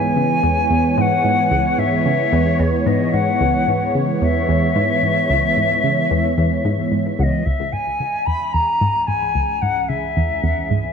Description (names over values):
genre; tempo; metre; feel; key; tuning
ambient, sequencer-driven space music; 111 BPM; 4/4; straight; C# minor; A4 = 439 Hz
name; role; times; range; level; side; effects
wooden flute; melody; 0.0-10.9 s; C#5 to B5; -19 LUFS; left 3 dB; ping-pong delay
sweeping resonant pad; sustained chords; 0.0-10.9 s; E3 to C#5; -21 LUFS; right 1 dB; chorus
hollow square pluck; riff; 0.0-10.8 s; C#2 to C#3; -20 LUFS; equal; chorus, ping-pong delay
round analog bass; bass; 7.5-10.9 s; C#2; -38 LUFS; equal; none
room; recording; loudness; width
moderate plate reverb, RT60 3.0 s; nothing above 10.5 kHz; -16 LUFS; side -6 dB against mid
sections
0.0-7.5 A section; 7.5-10.9 B section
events
filter sweep on synth arpeggio sound 7.5-10.9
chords
0.0 C#m